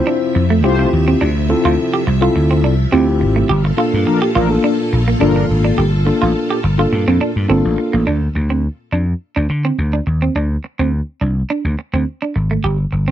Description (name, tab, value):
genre	funk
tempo	105 BPM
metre	4/4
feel	straight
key	D minor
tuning	A4 = 440 Hz
part	mellow tine electric piano	accompaniment	0.0-8.1 s	Bb3 to C5	-17 LUFS	left 2 dB	slow stereo tremolo
part	string machine, full ensemble	sustained chords	0.0-8.0 s	Bb2 to E5	-24 LUFS	left 1 dB	ensemble chorus
part	clean electric guitar	riff	0.1-13.1 s	A3 to G4	-19 LUFS	right 5 dB	lush chorus
part	vintage slap bass	bass	0.4-13.1 s	G1 to D3	-16 LUFS	equal	none
part	mellow synth brass	second line	0.6-5.5 s	F3 to C5	-19 LUFS	left 3 dB	chorus
room	little or no reverb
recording	dry, close 1970s-style studio recording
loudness	-13 LUFS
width	side -11 dB against mid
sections	0.0-8.1 A section; 8.1-13.1 B section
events	none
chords	0.0 Dm9; 3.5 Gm9; 8.1 D7(no3)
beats	0.07 0.64 | 1.21 1.78 2.35 2.93 | 3.50 4.07 4.64 5.21 | 5.78 6.35 6.93 7.50 | 8.07 8.64 9.21 9.78 | 10.35 10.93 11.50 12.07 | 12.64